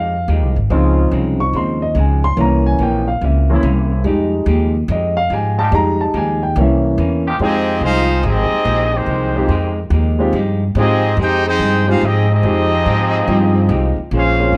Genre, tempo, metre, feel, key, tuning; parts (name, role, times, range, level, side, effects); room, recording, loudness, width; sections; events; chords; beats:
jazz, big band swing; 143 BPM; 4/4; swing 65% on 8ths; F minor; A4 = 440 Hz
vintage hollow-body jazz guitar; accompaniment; 0.0-14.6 s; C3 to C5; -28 LUFS; equal
warm grand piano; accompaniment; 0.0-14.5 s; E3 to Db6; -20 LUFS; equal
upright bass; bass; 0.0-14.6 s; Ab1 to Ab2; -19 LUFS; equal
muted trombone section; sustained chords; 0.7-7.4 s; Db3 to G4; -28 LUFS; equal
warm trumpet section; melody; 7.4-14.5 s; Ab3 to G5; -20 LUFS; equal
bright trombone section; second line; 7.4-14.6 s; Eb3 to Ab4; -24 LUFS; equal
moderate large studio reverb, RT60 1.1 s; -16 LUFS; mono
0.0-7.4 A section; 7.4-14.6 B section
grand piano solo 0.0-7.4
0.0 Fm9; 0.7 Dbmaj7; 2.4 C7b9; 4.0 Fm9; 6.6 C7b9; 7.4 Fm9
0.28 | 0.70 1.12 1.54 1.96 | 2.38 2.79 3.21 3.63 | 4.05 4.47 4.89 5.31 | 5.73 6.14 6.56 6.98 | 7.40 7.82 8.24 8.66 | 9.08 9.50 9.92 10.34 | 10.76 11.18 11.59 12.01 | 12.43 12.85 13.27 13.69 | 14.11 14.53